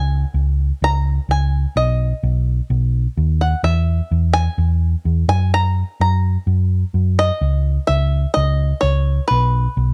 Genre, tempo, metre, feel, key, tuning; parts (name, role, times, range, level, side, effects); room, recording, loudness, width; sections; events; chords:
indie folk with a building arrangement; 127 BPM; 4/4; straight; A4 = 440 Hz
bluegrass banjo; melody; 0.0-9.9 s; B4 to A#5; -23 LUFS; equal
hollow-body short-scale picked electric bass; bass; 0.0-9.9 s; B1 to F#2; -18 LUFS; equal
light reverb; dark, warm production; -18 LUFS; mono
0.0-9.9 A section
0.0 C#5; 1.8 B; 3.6 E; 5.3 F#; 7.4 C#m; 9.3 N.C.